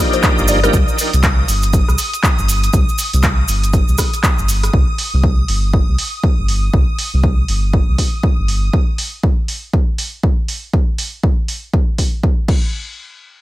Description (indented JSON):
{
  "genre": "deep house",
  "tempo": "120 BPM",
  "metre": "4/4",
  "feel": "swing 60% on 16ths",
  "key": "C minor",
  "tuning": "A4 = 441 Hz",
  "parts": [
    { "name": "bright tonewheel organ", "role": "stabs", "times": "0.0-0.8 s", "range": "F3 to G4", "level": "-18 LUFS", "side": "equal", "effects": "overdrive, chorus vibrato, slow rotary speaker, sidechain pumping, digital delay" },
    { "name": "string machine, violins", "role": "texture", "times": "0.0-8.7 s", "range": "Eb6", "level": "-26 LUFS", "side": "equal", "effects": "ensemble chorus" },
    { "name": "mallet-like synth pluck", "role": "arpeggios", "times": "0.1-0.7 s", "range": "Bb4 to D5", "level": "-23 LUFS", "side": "left 4 dB", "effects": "chorus, cassette tape, sidechain pumping, digital delay" },
    { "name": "punchy analog drum machine", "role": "drums", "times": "0.1-12.6 s", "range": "crash cymbal, handclaps, hi-hat, rim click", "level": "-22 LUFS", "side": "right 1 dB", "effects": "none" },
    { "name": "cabasa", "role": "percussion", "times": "0.1-4.7 s", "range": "none", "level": "-24 LUFS", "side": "right 3 dB", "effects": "none" },
    { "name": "electronic kick drum", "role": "drums", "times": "0.2-12.6 s", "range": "none", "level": "-15 LUFS", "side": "equal", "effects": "none" },
    { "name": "round analog bass", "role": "bass", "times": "0.4-8.7 s", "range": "G1 to C2", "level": "-16 LUFS", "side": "equal", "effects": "sidechain pumping" }
  ],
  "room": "little or no reverb",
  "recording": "none",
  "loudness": "-13 LUFS",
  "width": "side -16 dB against mid",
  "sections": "0.0-12.7 A section",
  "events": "none",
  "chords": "0.0 Cm11; 4.7 Cm/G; 12.5 N.C."
}